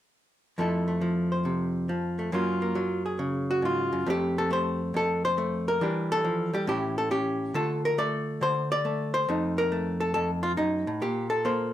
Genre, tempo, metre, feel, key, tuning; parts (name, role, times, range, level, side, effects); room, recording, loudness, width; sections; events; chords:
solo jazz; 138 BPM; 4/4; swing 68% on 8ths; F major; A4 = 440 Hz
archtop guitar, miked and amplified; solo; 0.6-11.7 s; F2 to D5; -25 LUFS; equal
moderate studio reverb, RT60 0.6 s; -25 LUFS; side -12 dB against mid
0.6-4.1 A section; 4.1-11.7 B section
0.6 Fmaj7; 2.3 Gbmaj7; 4.1 Fadd9; 5.8 Gm13/E; 6.7 A7; 7.5 Dm; 9.3 F7b9; 11.0 Bbsus2